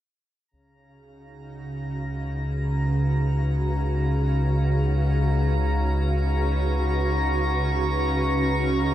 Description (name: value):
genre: ambient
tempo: free time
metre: none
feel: none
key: unclear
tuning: A4 = 440 Hz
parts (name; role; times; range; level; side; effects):
- granular cloud pad; sustained chords; 1.5-8.9 s; Db3 to Cb5; -29 LUFS; right 1 dB; built-in reverb
- round analog bass; bass; 0.5-8.9 s; Db2; -26 LUFS; equal; none
- organ-like drone; drone; 1.5-8.9 s; Db3; -26 LUFS; equal; ensemble chorus, built-in reverb
- drifting glass-harmonics texture; texture; 1.6-8.9 s; Bb5 to Bb6; -31 LUFS; left 1 dB; chorus, built-in reverb
room: moderate huge ambient reverb, RT60 9.0 s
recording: none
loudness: -21 LUFS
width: side -12 dB against mid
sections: 0.5-8.9 A section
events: fade-in on ambient pad 0.5-8.9; fade-in on synth texture 0.5-8.9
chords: 0.5 Db7sus4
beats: free time